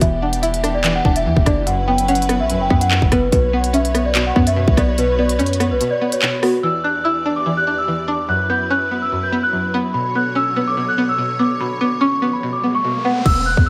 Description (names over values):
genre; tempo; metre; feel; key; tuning
hip hop, drill; 145 BPM; 4/4; half-time; B minor; A4 = 440 Hz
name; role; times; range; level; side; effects
celesta; melody; 0.0-13.7 s; F#4 to G6; -22 LUFS; equal; low-pass filter, delay
string-like resonator pluck; accompaniment; 0.0-13.3 s; F#2 to E4; -24 LUFS; equal; chorus, phaser, low-pass filter
warm symphonic string section; sustained chords; 0.0-13.2 s; E2 to D5; -29 LUFS; equal; none
hard-hitting 808-style bass; bass; 0.0-5.8, 13.3-13.7 s; E1 to F#2; -22 LUFS; equal; none
drill drum kit; drums; 0.0-6.5, 13.3-13.7 s; crash cymbal, handclaps, hi-hat, kick drum, rim click; -21 LUFS; equal; none
riser; sound effects; 12.3-13.3 s; none; -30 LUFS; equal; none
room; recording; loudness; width
light reverb, digital ambience; none; -18 LUFS; mono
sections
0.0-6.6 A section; 6.6-13.3 B section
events
kick muted 5.8-6.6; riser 12.3-13.3; hi-hats muted 13.3-13.7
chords
0.0 Em7; 1.7 F#7sus4; 3.3 Bsus2; 6.6 Em7; 8.3 F#7sus4; 9.9 Bmadd9